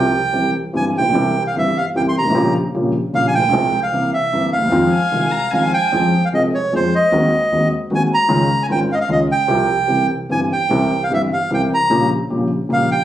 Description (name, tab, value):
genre	tango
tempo	151 BPM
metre	3/4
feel	rubato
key	F minor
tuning	A4 = 442 Hz
part	bandoneon	melody	0.0-13.0 s	C5 to C6	-17 LUFS	right 2 dB	none
part	warm baby grand piano	accompaniment	0.0-12.9 s	G1 to Ab4	-18 LUFS	left 1 dB	none
part	upright bass	bass	0.0-12.9 s	G1 to F2	-26 LUFS	equal	none
part	warm violin	second line	4.9-5.9 s	Ab5 to Bb5	-23 LUFS	left 4 dB	none
room	moderate large studio reverb, RT60 0.8 s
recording	recorded on a phone in the room, club reverb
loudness	-15 LUFS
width	side -12 dB against mid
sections	0.0-5.9 A section; 5.9-13.0 A section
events	none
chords	0.3 C; 2.4 Gdim/Bb; 3.5 Fm/C; 3.9 C7; 4.7 Fm7; 5.9 Fm; 7.1 Ab7/Eb; 8.3 Dbadd9; 9.5 Csus4; 9.9 C; 11.9 Gdim/Bb